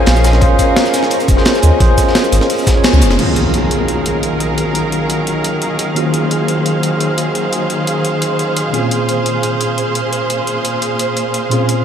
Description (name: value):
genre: liquid drum and bass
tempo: 173 BPM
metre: 4/4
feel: straight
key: unclear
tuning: A4 = 440 Hz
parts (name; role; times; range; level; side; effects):
- concert flute; melody; 0.0-1.4 s; F5; -25 LUFS; equal; diffuse ambient delay
- tine electric piano; accompaniment; 0.0-11.8 s; Bb2 to Eb5; -17 LUFS; equal; fast stereo tremolo, low-pass filter, diffuse ambient delay
- rich studio string section; sustained chords; 0.0-11.8 s; Bb2 to F5; -18 LUFS; right 1 dB; none
- warm sub bass; bass; 0.1-3.2 s; F1 to Eb2; -11 LUFS; equal; none
- breakbeat sampler-style drum kit; drums; 0.1-11.8 s; crash cymbal, hi-hat, shaker, snare drum; -19 LUFS; equal; none
- crunchy breakbeat drum kit; drums; 0.1-3.2 s; hi-hat, snare drum; -25 LUFS; equal; high-pass filter on hats, high-pass filter on snare, high-pass filter on room
- electronic kick drum; drums; 0.4-2.7 s; none; -13 LUFS; equal; none
- impact; sound effects; 3.2-4.6 s; none; -23 LUFS; equal; none
room: wet cathedral reverb, RT60 7.2 s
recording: dreamy mix soaked in reverb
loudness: -12 LUFS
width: side -8 dB against mid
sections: 0.0-3.2 A section; 3.2-11.8 B section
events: drop 0.0-3.2; kick drops out 2.8-3.2; band accent 2.8; impact 3.2-4.6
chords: 0.0 Bbm9; 3.2 Ebm11; 8.7 Bbm9